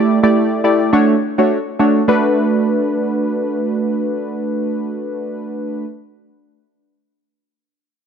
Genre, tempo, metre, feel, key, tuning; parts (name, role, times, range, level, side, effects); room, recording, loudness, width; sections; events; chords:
afrobeats; 104 BPM; 4/4; swing 58% on 16ths; B minor; A4 = 440 Hz
warm analog keys; accompaniment; 0.0-5.9 s; A3 to D5; -14 LUFS; right 1 dB; chorus
light reverb; dense, heavily limited modern master; -15 LUFS; side -7 dB against mid
0.0-2.1 A section; 2.1-4.4 B section
0.0 A7sus4; 0.9 Dmaj7; 2.1 Bm7